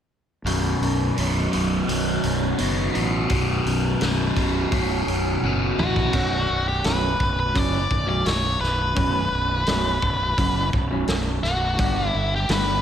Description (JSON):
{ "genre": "quiet-loud alternative rock", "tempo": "85 BPM", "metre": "4/4", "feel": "straight", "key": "unclear", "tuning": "A4 = 440 Hz", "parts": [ { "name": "fuzz fingered electric bass", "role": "bass", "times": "0.4-12.8 s", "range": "B0 to A1", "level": "-26 LUFS", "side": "equal", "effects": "overdrive" }, { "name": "electric guitar through a small old amp", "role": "arpeggios", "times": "0.5-12.7 s", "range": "B1 to G4", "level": "-28 LUFS", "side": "right 1 dB", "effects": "digital delay" }, { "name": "overdriven electric guitar", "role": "riff", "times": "0.5-6.1 s", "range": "B1 to B2", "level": "-23 LUFS", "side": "left 1 dB", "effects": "phaser" }, { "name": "loose indie drum kit", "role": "drums", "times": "0.5-12.7 s", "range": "crash cymbal, hi-hat, kick drum, snare drum, toms", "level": "-27 LUFS", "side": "equal", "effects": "none" }, { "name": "octave-fuzz lead guitar", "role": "melody", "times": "5.8-12.8 s", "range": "F#4 to D5", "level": "-24 LUFS", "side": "left 1 dB", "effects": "distortion, slapback echo" } ], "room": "moderate concert hall reverb, RT60 1.9 s, small room ambience", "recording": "big arena sound", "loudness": "-20 LUFS", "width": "side -9 dB against mid", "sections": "0.5-6.1 A section; 6.1-12.8 B section", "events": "drum fill 5.4-6.1", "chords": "0.5 Bsus2; 11.8 G" }